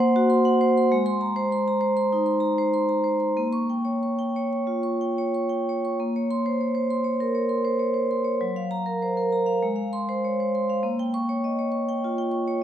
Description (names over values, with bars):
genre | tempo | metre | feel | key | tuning
classical, contemporary piece for solo vibraphone | 92-102 BPM | 4/4 | rubato | Bb minor | A4 = 439 Hz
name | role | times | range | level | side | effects
vibraphone with medium hard mallets | solo | 0.0-12.6 s | Gb3 to Db6 | -22 LUFS | equal | none
room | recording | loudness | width
wet recital hall reverb, RT60 1.4 s | recorded in a church or concert hall | -22 LUFS | side -10 dB against mid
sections
0.0-6.0 A section; 6.0-12.6 A section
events
none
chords
0.0 Bbsus2; 0.9 Abadd9; 3.4 Bbm6; 6.0 Bbmadd9; 8.4 Gbmaj7; 9.6 Ab6; 10.8 Bbm6